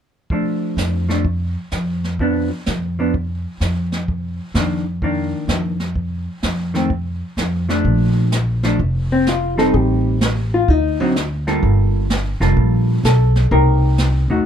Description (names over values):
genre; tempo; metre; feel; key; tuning
jazz, small-group swing and bop; 127 BPM; 4/4; swing 66% on 8ths; Bb major; A4 = 440 Hz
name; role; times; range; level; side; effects
hollow-body jazz guitar; accompaniment; 0.3-14.5 s; D3 to A4; -20 LUFS; right 1 dB; none
jazz brush drum kit; drums; 0.3-14.5 s; brushed snare drum, hi-hat, kick drum, snare drum; -24 LUFS; right 1 dB; none
upright bass; bass; 0.8-14.4 s; F1 to F2; -18 LUFS; equal; none
hollow-body jazz guitar; melody; 9.1-14.2 s; C4 to Bb4; -19 LUFS; left 3 dB; none
room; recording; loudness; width
light reverb; dark, warm production; -16 LUFS; side -9 dB against mid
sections
0.3-7.8 A section; 7.8-14.5 B section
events
none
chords
0.3 F6; 2.2 Bdim/F; 4.1 Bbadd11/F; 6.0 F; 7.8 Bbmaj7; 9.7 Am7b5; 10.7 D7b9; 11.6 Gm9; 13.5 Cm7